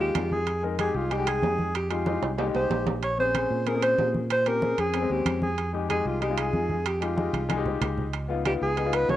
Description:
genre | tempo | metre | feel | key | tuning
Afro-Cuban jazz | 188 BPM | 4/4 | straight | F minor | A4 = 438 Hz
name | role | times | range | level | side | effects
mellow alto saxophone | melody | 0.0-9.2 s | F4 to Db5 | -27 LUFS | right 1 dB | cassette tape
warm concert grand piano | accompaniment | 0.0-9.2 s | Ab3 to G5 | -30 LUFS | left 6 dB | none
fingered electric bass | bass | 0.0-9.2 s | Bb1 to Bb2 | -31 LUFS | right 1 dB | none
timbales | percussion | 0.1-9.2 s | none | -34 LUFS | right 10 dB | none
congas | percussion | 0.2-9.2 s | none | -33 LUFS | equal | none
room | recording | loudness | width
moderate spring reverb, RT60 2.2 s | home recording on cassette | -24 LUFS | side -13 dB against mid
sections
0.0-9.2 A section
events
drum fill 2.1-3.0, 7.3-8.1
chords
0.0 Fm7; 3.0 Bbm7; 5.6 Fm7; 8.1 Db7

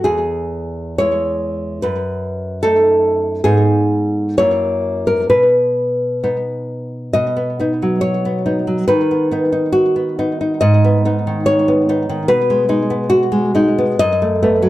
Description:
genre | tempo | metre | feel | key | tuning
romantic piece for solo classical guitar | 60-76 BPM | 2/4 | rubato | B major from 3.4 s | A4 = 441 Hz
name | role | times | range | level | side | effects
nylon-string guitar | solo | 0.0-14.7 s | E2 to D#5 | -14 LUFS | equal | slapback echo
room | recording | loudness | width
moderate studio ambience, RT60 0.5 s | dark, warm production | -14 LUFS | side -15 dB against mid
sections
0.0-7.2 A section; 7.2-14.7 B section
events
none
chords
0.0 E; 1.8 B7/F#; 3.4 G#m; 4.4 F#7; 5.3 B; 8.9 B/D#; 10.6 G#m; 12.3 G#m/B; 14.0 B7/F#

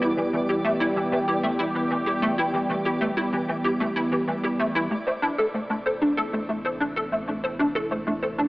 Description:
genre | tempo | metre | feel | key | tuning
ambient, sequencer-driven space music | 95 BPM | 4/4 | straight | A minor | A4 = 440 Hz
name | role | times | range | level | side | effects
sweeping resonant pad | sustained chords | 0.0-8.5 s | C3 to G4 | -27 LUFS | equal | wide subtle chorus, shimmer reverb
hollow square pluck | riff | 0.0-8.4 s | E3 to C5 | -24 LUFS | equal | ensemble chorus, tape echo, shimmer reverb
warm sub bass | bass | 0.0-8.5 s | E1 to A1 | -48 LUFS | equal | none
twinkling granular texture | texture | 0.0-4.9 s | D5 | -36 LUFS | right 1 dB | built-in reverb, shimmer reverb
room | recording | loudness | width
wet plate reverb, RT60 3.1 s | cassette tape, AM radio sound, faint mains hum | -22 LUFS | side -21 dB against mid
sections
0.0-4.9 A section; 4.9-8.5 B section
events
none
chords
0.0 Em; 4.9 Amadd9

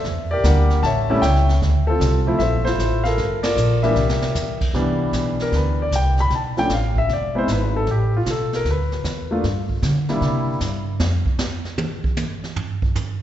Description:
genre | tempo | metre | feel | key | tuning
jazz piano trio | 153 BPM | 4/4 | swing 67% on 8ths | C major from 4.7 s | A4 = 440 Hz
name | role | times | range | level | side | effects
warm grand piano | melody | 0.0-10.6 s | E3 to B5 | -21 LUFS | left 2 dB | none
upright bass | bass | 0.0-11.3 s | E1 to D3 | -20 LUFS | equal | none
jazz brush drum kit | drums | 0.0-13.1 s | brushed snare drum, crash cymbal, hi-hat, kick drum, ride cymbal, snare drum, toms | -27 LUFS | right 2 dB | none
room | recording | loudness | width
wet concert hall reverb, RT60 1.8 s | recorded in a church or concert hall, nothing above 7.9 kHz | -18 LUFS | side -11 dB against mid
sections
0.0-4.7 A section; 4.7-13.2 B section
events
band accent 3.4; drum fill 4.0-4.4; grand piano solo 4.7-13.2; drum solo 11.0-13.2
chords
0.1 Em7b5; 0.8 A7; 1.6 Dm9; 3.2 Gm9; 4.0 C7; 4.7 Cmaj9; 6.3 B7(b5, no3); 7.1 E; 7.9 Asus24; 9.4 G5; 10.2 C9; 11.0 N.C.

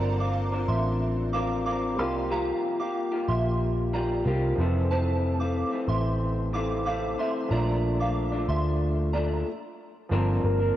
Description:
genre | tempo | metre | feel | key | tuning
indie pop, bedroom pop | 92 BPM | 4/4 | straight | G dorian | A4 = 439 Hz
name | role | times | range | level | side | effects
soft synth bell | second line | 0.0-9.3 s | C5 to D6 | -32 LUFS | right 2 dB | ensemble chorus, cassette tape, analog delay
electric guitar through a small old amp | accompaniment | 0.0-10.8 s | F2 to Bb4 | -29 LUFS | left 2 dB | wide subtle chorus, vibrato effect, cassette tape
warm upright piano | accompaniment | 0.0-10.8 s | E3 to A5 | -36 LUFS | right 3 dB | cassette tape
vintage muted picked electric bass | bass | 0.0-10.7 s | F1 to D2 | -27 LUFS | equal | none
soft octave-layered synth lead | melody | 10.5-10.8 s | Bb4 | -28 LUFS | right 1 dB | phaser, wide subtle chorus, cassette tape
room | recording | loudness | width
moderate lush hall reverb, RT60 2.8 s | home recording on cassette | -24 LUFS | side -13 dB against mid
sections
0.0-10.1 A section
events
stop 9.5-10.1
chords
0.0 Gm11; 2.0 C7sus4; 4.6 Fmaj7; 7.5 Bbmaj7; 10.1 Gm11

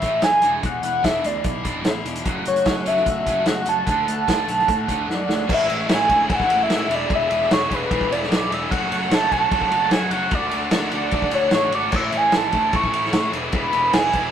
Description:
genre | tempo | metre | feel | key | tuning
indie rock | 149 BPM | 4/4 | straight | A major | A4 = 439 Hz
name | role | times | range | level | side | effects
overdriven synth lead | melody | 0.0-14.3 s | B4 to C#6 | -20 LUFS | right 1 dB | distortion, chorus
biting overdriven guitar | riff | 0.0-14.3 s | E2 to F#4 | -29 LUFS | left 4 dB | none
biting overdriven guitar | riff | 0.0-14.3 s | A2 to A4 | -29 LUFS | right 3 dB | none
fuzz picked electric bass | bass | 0.0-14.3 s | E1 to A2 | -31 LUFS | equal | overdrive
vintage drum kit | drums | 0.0-14.2 s | crash cymbal, hi-hat, kick drum, ride cymbal, snare drum | -23 LUFS | equal | none
tonewheel organ | sustained chords | 2.2-14.3 s | D3 to D6 | -32 LUFS | left 1 dB | slow rotary speaker, chorus vibrato
room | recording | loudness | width
moderate stone room reverb, RT60 1.3 s | rough rehearsal-room recording, tube saturation | -18 LUFS | side -9 dB against mid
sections
0.0-5.5 A section; 5.5-14.3 B section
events
drum fill 5.1-5.5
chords
0.4 E7; 2.3 F#m; 3.9 Dmaj7; 5.5 Amaj7; 6.9 E7; 8.7 F#m; 10.3 Dmaj7; 11.9 A; 13.3 E7

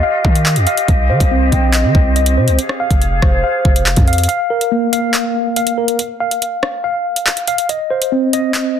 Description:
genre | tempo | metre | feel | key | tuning
hip hop, drill | 141 BPM | 4/4 | half-time | unclear | A4 = 441 Hz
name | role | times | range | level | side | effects
hollow clarinet-like synth lead | second line | 0.0-3.8 s | C5 to G5 | -23 LUFS | right 2 dB | chorus, digital delay
small flute group | sustained chords | 0.0-4.3 s | C4 to F5 | -22 LUFS | left 3 dB | none
mellow tine electric piano | arpeggios | 0.0-8.8 s | Bb3 to F5 | -17 LUFS | equal | medium stereo tremolo, low-pass filter, digital delay
hard-hitting 808-style bass | bass | 0.0-4.3 s | F1 to Eb3 | -15 LUFS | equal | none
drill drum kit | drums | 0.2-8.6 s | handclaps, hi-hat, kick drum, rim click | -15 LUFS | equal | none
room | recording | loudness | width
digital ambience | dense, heavily limited modern master | -12 LUFS | side -9 dB against mid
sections
0.0-4.3 A section; 4.3-8.8 B section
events
break 4.3-8.8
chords
0.0 Ebadd9; 0.9 Cm; 2.6 Fmadd9; 4.3 Bb5; 6.0 N.C.; 7.7 Cm

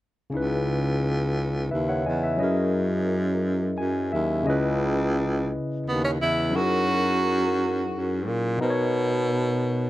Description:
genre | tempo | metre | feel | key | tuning
slow six-eight R&B | 58 BPM (dotted quarters) | 6/8 | straight | C# dorian | A4 = 440 Hz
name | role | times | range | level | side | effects
barky tine electric piano | accompaniment | 0.3-9.9 s | B2 to G#5 | -26 LUFS | left 1 dB | overdrive
breathy baritone saxophone | bass | 0.3-9.9 s | C#2 to B2 | -26 LUFS | right 1 dB | none
breathy tenor saxophone | melody | 5.9-8.3 s | B3 to F#4 | -25 LUFS | right 2 dB | none
room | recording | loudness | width
light reverb, small room ambience | none | -22 LUFS | side -15 dB against mid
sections
0.3-4.5 A section; 4.5-9.9 B section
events
tine electric piano fill 3.4-4.5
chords
0.3 C#m9; 2.4 F#13; 4.5 C#m9; 6.5 F#13; 8.6 Bmaj7

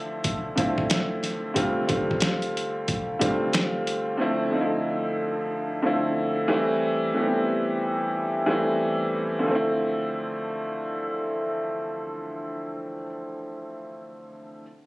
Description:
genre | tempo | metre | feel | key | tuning
hip hop, boom-bap hip-hop | 91 BPM | 4/4 | swing 62% on 16ths | D minor | A4 = 443 Hz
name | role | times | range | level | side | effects
warm upright piano | accompaniment | 0.0-14.6 s | D3 to G4 | -24 LUFS | equal | high-pass filter, low-pass filter
boom bap sampler-style drum kit | drums | 0.2-4.1 s | hi-hat, kick drum, snare drum | -26 LUFS | equal | none
room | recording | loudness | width
light reverb | recorded on a phone in the room, club reverb, compression | -24 LUFS | side -21 dB against mid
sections
0.0-9.5 A section; 9.5-12.1 B section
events
none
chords
0.0 Dm9; 1.6 G7sus4; 4.2 Dm9; 6.5 Am7; 9.5 Dm9

